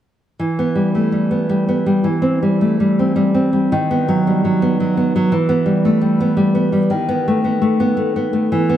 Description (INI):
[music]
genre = romantic piece for solo classical guitar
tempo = 110 BPM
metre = 3/4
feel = rubato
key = E minor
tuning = A4 = 439 Hz
[part]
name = nylon-string guitar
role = solo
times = 0.4-8.8 s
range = D#3 to C4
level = -14 LUFS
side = equal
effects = none
[sound]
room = moderate plate reverb, RT60 3.4 s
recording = heard from further back in the room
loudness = -14 LUFS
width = side -11 dB against mid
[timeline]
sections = 0.4-8.8 A section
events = none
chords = 0.4 Em; 2.1 C/E; 3.7 B/D#; 5.3 Em; 6.9 B7/D#